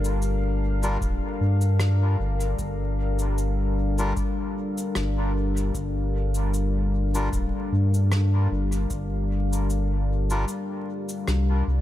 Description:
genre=ambient dub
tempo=76 BPM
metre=4/4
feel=swing 54% on 16ths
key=G minor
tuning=A4 = 440 Hz
part: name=deep dark ambient pad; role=sustained chords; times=0.0-11.8 s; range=G3 to F5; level=-29 LUFS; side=left 3 dB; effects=chorus, built-in reverb
part: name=warm sub bass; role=bass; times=0.0-11.8 s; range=D1 to G2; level=-23 LUFS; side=equal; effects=none
part: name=cabasa and rim click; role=drums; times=0.0-11.4 s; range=none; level=-34 LUFS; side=left 1 dB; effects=dub echo
part: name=melodica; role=stabs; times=0.8-10.4 s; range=G3 to Bb4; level=-35 LUFS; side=left 1 dB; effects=dub echo
part: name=electronic kick drum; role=drums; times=1.0-9.1 s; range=none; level=-32 LUFS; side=equal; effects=none
room=small room ambience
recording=vinyl crackle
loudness=-22 LUFS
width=side -13 dB against mid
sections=0.0-11.8 A section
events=kick drops out 10.5-11.8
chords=0.0 Gm7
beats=0.22 1.01 1.80 | 2.59 3.38 4.17 4.96 | 5.75 6.54 7.33 8.12 | 8.91 9.70 10.49 11.28

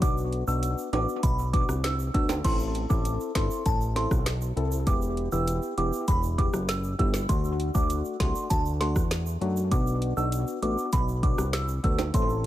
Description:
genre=dancehall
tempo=99 BPM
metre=4/4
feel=straight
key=A dorian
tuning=A4 = 444 Hz
part: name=glassy synth bell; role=melody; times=0.0-12.3 s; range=A5 to E6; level=-32 LUFS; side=right 2 dB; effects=chorus, tape echo
part: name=percussive organ stab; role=accompaniment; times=0.0-12.5 s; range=A3 to A4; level=-32 LUFS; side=left 3 dB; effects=chorus, tape echo
part: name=fat analog bass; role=bass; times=0.0-12.5 s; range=E1 to F#2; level=-28 LUFS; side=equal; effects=none
part: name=afro-pop drum kit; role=drums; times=0.0-12.5 s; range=crash cymbal, hi-hat, kick drum, rim click, snare drum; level=-27 LUFS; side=equal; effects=none
part: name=egg shaker and timbales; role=percussion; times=0.0-12.4 s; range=none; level=-38 LUFS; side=right 7 dB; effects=tape echo
room=digital ambience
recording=echo-heavy mix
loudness=-24 LUFS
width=side -14 dB against mid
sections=0.0-2.4 A section; 2.4-12.5 A section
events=none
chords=0.0 Bm; 2.4 Am; 4.9 Em; 7.3 D; 9.7 Bm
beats=| 0.02 0.63 1.23 1.84 | 2.44 3.05 3.66 4.26 | 4.87 5.47 6.08 6.69 | 7.29 7.90 8.51 9.11 | 9.72 10.32 10.93 11.54 | 12.14

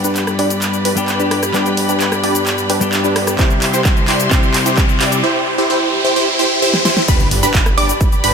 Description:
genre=EDM, festival progressive house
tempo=130 BPM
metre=4/4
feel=straight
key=G major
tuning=A4 = 440 Hz
part: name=clean electric guitar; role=accompaniment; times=0.0-5.2 s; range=G2 to G4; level=-20 LUFS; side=left 2 dB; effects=warbly pitch drift, sidechain pumping, ping-pong delay
part: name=warm chamber string section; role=sustained chords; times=0.0-8.3 s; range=G4 to C6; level=-23 LUFS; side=left 1 dB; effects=sidechain pumping, low-pass filter
part: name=supersaw stab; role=riff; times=0.0-8.3 s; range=D4 to D5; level=-18 LUFS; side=right 1 dB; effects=sidechain pumping, low-pass filter, ping-pong delay
part: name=detuned saw bass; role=bass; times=0.0-8.3 s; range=G1 to C2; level=-26 LUFS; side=equal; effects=none
part: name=big-room dance drum kit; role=drums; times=0.0-8.3 s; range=crash cymbal, handclaps, hi-hat, rim click, shaker, snare drum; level=-19 LUFS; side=equal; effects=studio reverb
part: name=riser and impact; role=sound effects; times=0.0-8.3 s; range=none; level=-22 LUFS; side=right 1 dB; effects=none
part: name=electronic kick drum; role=drums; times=3.4-8.1 s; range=none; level=-15 LUFS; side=equal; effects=studio reverb
part: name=wide unison pluck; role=arpeggios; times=7.1-8.3 s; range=B5 to D6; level=-19 LUFS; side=right 2 dB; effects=sidechain pumping, ping-pong delay
room=light reverb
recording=none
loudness=-12 LUFS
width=side -6 dB against mid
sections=0.0-7.1 A section; 7.1-8.3 B section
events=build-up 0.0-7.1; drum fill 0.0-5.2, 6.7-7.1; riser 0.0-7.1; filter sweep on supersaw synth 0.0-7.1; drop 7.1-8.3; impact 7.1-8.3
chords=0.0 G; 3.4 C; 5.2 C/E; 7.1 G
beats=0.16 0.62 1.08 | 1.54 2.01 2.47 2.93 | 3.39 3.85 4.31 4.78 | 5.24 5.70 6.16 6.62 | 7.08 7.54 8.01

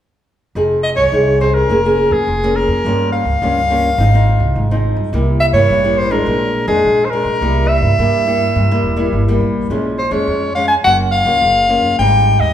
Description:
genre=samba and choro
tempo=105 BPM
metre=4/4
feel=straight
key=F minor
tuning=A4 = 444 Hz
part: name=nylon-string guitar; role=accompaniment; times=0.6-12.5 s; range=F2 to Ab4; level=-17 LUFS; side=left 1 dB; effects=none
part: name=upright bass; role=bass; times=0.6-12.5 s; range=E1 to Bb2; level=-17 LUFS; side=right 1 dB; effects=none
part: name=breathy soprano saxophone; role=melody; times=0.8-12.5 s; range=Ab4 to Ab5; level=-15 LUFS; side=left 1 dB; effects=none
room=wet large studio reverb, RT60 1.4 s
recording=band playing live in one room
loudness=-12 LUFS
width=side -10 dB against mid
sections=0.6-12.5 A section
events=none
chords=0.6 Fm7; 1.7 Bbm7/F; 2.8 Gm7b5; 4.0 Fm7/Ab; 5.1 C7; 6.3 Bb7; 7.4 C7; 9.7 Bbm7; 10.8 Gbmaj7; 12.0 Abmaj7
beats=| 0.55 1.13 1.70 2.27 | 2.84 3.41 3.99 4.56 | 5.13 5.70 6.27 6.84 | 7.42 7.99 8.56 9.13 | 9.70 10.27 10.85 11.42 | 11.99

